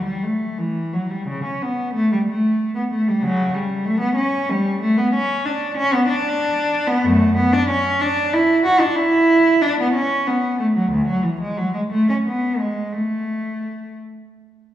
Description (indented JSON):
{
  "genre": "classical, baroque-style suite movement for unaccompanied cello",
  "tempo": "62 BPM (dotted quarters)",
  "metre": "6/8",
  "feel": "uneven beats, rubato",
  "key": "D major, A major from 7.1 s",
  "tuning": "A4 = 440 Hz",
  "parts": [
    { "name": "warm cello", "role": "solo", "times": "0.0-14.0 s", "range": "D2 to F#4", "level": "-17 LUFS", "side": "equal", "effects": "none" }
  ],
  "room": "wet recital hall reverb, RT60 1.7 s",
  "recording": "heard from further back in the room",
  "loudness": "-17 LUFS",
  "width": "side -12 dB against mid",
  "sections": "0.0-14.7 A section",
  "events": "none",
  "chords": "none"
}